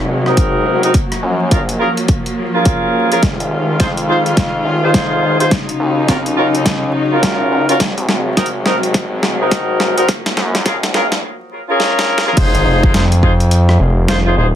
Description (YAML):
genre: glitch hop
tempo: 105 BPM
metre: 4/4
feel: swing 62% on 16ths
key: F phrygian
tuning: A4 = 439 Hz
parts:
  - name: warm studio string section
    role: sustained chords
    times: 0.0-11.2 s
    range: C3 to F4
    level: -19 LUFS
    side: left 1 dB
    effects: sidechain pumping
  - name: gritty driven synth bass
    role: bass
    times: 0.0-14.6 s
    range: Eb1 to Gb2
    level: -17 LUFS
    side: equal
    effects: tube saturation, high-pass filter
  - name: dark horn section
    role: stabs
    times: 0.3-14.5 s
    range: C4 to C5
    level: -17 LUFS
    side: equal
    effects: sidechain pumping, low-pass filter, dub echo
  - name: boom bap sampler-style drum kit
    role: drums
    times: 0.3-14.2 s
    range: crash cymbal, hi-hat, rim click, snare drum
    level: -19 LUFS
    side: equal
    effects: none
  - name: electronic kick drum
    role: drums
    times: 0.4-13.4 s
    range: none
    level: -16 LUFS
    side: equal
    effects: overdrive
room: moderate small room reverb, RT60 0.5 s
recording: dense, heavily limited modern master, vinyl crackle, high-pass filter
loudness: -12 LUFS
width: side -10 dB against mid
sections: 0.0-12.4 A section; 12.4-14.6 B section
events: build-up 0.0-12.4; filter sweep 0.0-12.4; drum fill 3.2-11.2, 11.8-12.4; drop 12.4-14.6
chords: 0.0 Ab7; 0.9 Gbmaj7; 3.2 Fm7; 5.5 Ebm7; 7.8 Ab7; 10.1 Gbmaj7; 12.4 Fm7